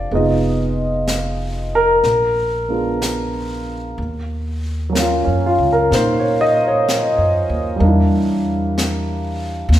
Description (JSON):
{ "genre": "jazz ballad", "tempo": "62 BPM", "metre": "4/4", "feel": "swing 68% on 8ths", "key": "unclear", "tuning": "A4 = 440 Hz", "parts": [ { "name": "dark baby grand piano", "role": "accompaniment", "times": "0.0-9.7 s", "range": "Gb3 to F5", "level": "-17 LUFS", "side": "equal", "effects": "none" }, { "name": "upright bass", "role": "bass", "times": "0.0-9.8 s", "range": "F1 to Bb2", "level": "-21 LUFS", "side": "equal", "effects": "none" }, { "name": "jazz brush drum kit", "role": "drums", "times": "0.1-9.8 s", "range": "brushed snare drum, hi-hat, snare drum", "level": "-26 LUFS", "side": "left 2 dB", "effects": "none" } ], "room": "wet recital hall reverb, RT60 1.6 s", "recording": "recorded in a church or concert hall", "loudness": "-15 LUFS", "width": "side -12 dB against mid", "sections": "0.0-4.0 A section; 4.0-9.8 B section", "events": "none", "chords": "0.1 Fm7b5; 2.0 Bb7b9; 4.0 Ebm7; 7.8 Em7b5" }